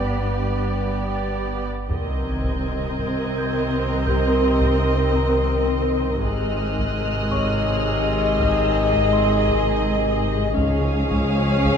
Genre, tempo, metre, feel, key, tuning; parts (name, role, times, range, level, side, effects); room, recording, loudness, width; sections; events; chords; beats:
cinematic, suspense film score; 83 BPM; 3/4; straight; C phrygian; A4 = 440 Hz
muted chamber violin section; melody; 0.0-11.8 s; D5 to F5; -30 LUFS; right 3 dB
muted studio violin section; second line; 0.0-11.8 s; G4 to Bb4; -28 LUFS; right 1 dB
muted chamber viola section; accompaniment; 0.0-11.8 s; C3 to Db4; -28 LUFS; left 1 dB
muted chamber cello section; bass; 0.0-11.8 s; Db2 to C3; -26 LUFS; right 1 dB
punchy sub bass; drone; 0.0-11.8 s; G1 to Db2; -28 LUFS; equal; lush chorus
worn celesta; texture; 0.0-11.8 s; G4 to B6; -35 LUFS; left 2 dB
dark French horn section; sustained chords; 1.9-11.8 s; Eb3 to Eb5; -25 LUFS; left 2 dB; stereo widening
muted chamber double bass section; bass; 1.9-11.8 s; Ab1 to Db2; -28 LUFS; left 1 dB
taiko ensemble; drums; 1.9-11.8 s; -30 LUFS; equal
sub drop; sound effects; 1.9-4.1 s; -34 LUFS; equal
muted chamber violin section; texture; 1.9-11.8 s; F5 to Ab6; -33 LUFS; right 1 dB
wet cathedral reverb, RT60 5.3 s; in a vast, echoing space; -19 LUFS; side -7 dB against mid
0.0-1.9 A section; 1.9-11.8 B section
impact 1.9-4.1
0.0 G; 1.9 Cm7; 6.2 Ab; 10.6 Db
0.45 1.18 | 1.90 2.62 3.35 | 4.07 4.79 5.51 | 6.24 6.96 7.68 | 8.41 9.13 9.85 | 10.57 11.30